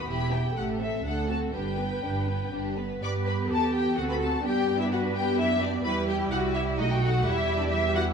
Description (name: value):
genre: quick classical-period movement for string orchestra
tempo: 126 BPM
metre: 3/4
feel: straight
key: G major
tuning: A4 = 439 Hz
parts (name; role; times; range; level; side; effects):
- rich studio violin section; melody; 0.0-8.0 s; D5 to D6; -32 LUFS; left 2 dB; none
- clear studio violin section; second line; 0.0-8.0 s; A3 to D5; -32 LUFS; left 4 dB; none
- warm studio viola section; accompaniment; 0.0-8.1 s; G3 to B4; -30 LUFS; right 2 dB; none
- clear studio double bass section; bass; 0.0-8.1 s; E1 to G2; -31 LUFS; right 2 dB; none
- rich studio cello section; bass; 0.0-8.1 s; D2 to B4; -34 LUFS; right 3 dB; none
room: wet scoring stage reverb, RT60 1.6 s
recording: dark, warm production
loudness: -24 LUFS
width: side -6 dB against mid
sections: 0.0-3.0 A section; 3.0-8.1 A section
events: none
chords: 0.1 Em; 0.6 Am7; 1.0 D7; 1.5 G; 4.0 D7; 4.5 G; 5.9 Em; 6.8 B7; 7.3 Em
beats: | 0.09 0.56 1.05 | 1.54 2.04 2.53 | 3.03 3.50 3.98 | 4.45 4.92 5.39 | 5.85 6.32 6.79 | 7.25 7.72